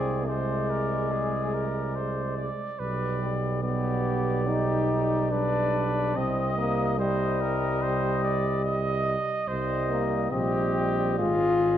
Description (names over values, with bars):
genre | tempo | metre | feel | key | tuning
classical, brass quintet | 72 BPM | 4/4 | rubato | C minor | A4 = 441 Hz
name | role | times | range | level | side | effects
warm trumpet | melody | 0.0-11.8 s | D5 to Eb5 | -33 LUFS | left 6 dB | none
warm trumpet | second line | 0.0-11.8 s | G4 to Eb5 | -33 LUFS | right 4 dB | none
clear French horn | accompaniment | 0.0-11.8 s | G3 to F4 | -28 LUFS | left 3 dB | none
warm euphonium | accompaniment | 0.0-11.8 s | G3 to Ab3 | -34 LUFS | right 4 dB | none
warm tuba | bass | 0.0-11.8 s | Ab1 to C2 | -29 LUFS | right 3 dB | none
room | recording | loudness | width
wet recital hall reverb, RT60 1.5 s | worn, warbling old tape, cassette tape, warbly pitch drift | -24 LUFS | side -10 dB against mid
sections
0.0-11.8 A section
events
none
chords
0.0 Bb9/C; 2.8 G/B; 6.2 Cm; 11.2 Fm7/Ab